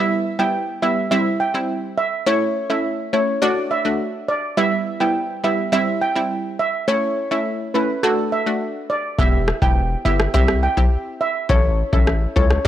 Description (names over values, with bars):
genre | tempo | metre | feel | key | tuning
dancehall | 104 BPM | 4/4 | straight | unclear | A4 = 440 Hz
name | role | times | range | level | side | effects
steel pan | melody | 0.0-12.7 s | A4 to G5 | -21 LUFS | right 2 dB | none
analog pluck | accompaniment | 0.0-12.7 s | G3 to A4 | -22 LUFS | equal | chorus
hard-hitting 808-style bass | bass | 9.2-12.7 s | E1 to C#2 | -20 LUFS | left 1 dB | none
booming analog drum machine | drums | 9.2-12.7 s | kick drum, rim click | -18 LUFS | left 1 dB | overdrive
room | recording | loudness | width
little or no reverb | dry, gritty hardware recording, transformer saturation | -17 LUFS | side -11 dB against mid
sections
0.0-12.7 A section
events
none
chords
0.0 Em; 1.1 C; 2.3 A; 3.4 D; 4.6 Em; 5.7 C; 6.9 A; 8.0 D; 9.2 Em; 10.3 C; 11.5 A